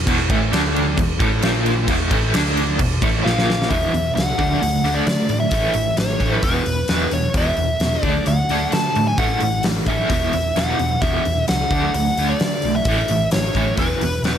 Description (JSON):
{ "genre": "hard rock", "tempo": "131 BPM", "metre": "4/4", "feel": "straight", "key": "unclear", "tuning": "A4 = 437 Hz", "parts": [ { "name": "overdriven semi-hollow guitar", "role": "riff", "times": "0.0-14.4 s", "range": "E2 to D4", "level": "-21 LUFS", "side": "right 1 dB", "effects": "tremolo" }, { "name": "hollow-body short-scale picked electric bass", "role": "bass", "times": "0.0-14.4 s", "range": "E1 to D3", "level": "-24 LUFS", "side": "equal", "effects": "none" }, { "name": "huge arena drum kit", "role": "drums", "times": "0.1-14.4 s", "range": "crash cymbal, hi-hat, kick drum, snare drum", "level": "-22 LUFS", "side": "equal", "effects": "none" }, { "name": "nasal lead guitar with a parked wah", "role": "melody", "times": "3.2-14.4 s", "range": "B4 to A5", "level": "-22 LUFS", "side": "equal", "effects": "overdrive, slapback echo" } ], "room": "small room ambience", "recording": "none", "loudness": "-16 LUFS", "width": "side -9 dB against mid", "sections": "0.0-3.7 A section; 3.7-14.4 B section", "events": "drum fill 3.2-3.7", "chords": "0.0 E5; 0.5 D5; 1.0 E5; 1.4 A#5; 1.9 E5; 2.3 D5; 2.8 E5; 3.2 A#5; 3.7 E5; 4.4 D5; 5.5 A; 6.4 E5; 8.0 D; 9.2 A5; 10.1 E5; 11.7 D5; 12.9 A; 13.8 E5" }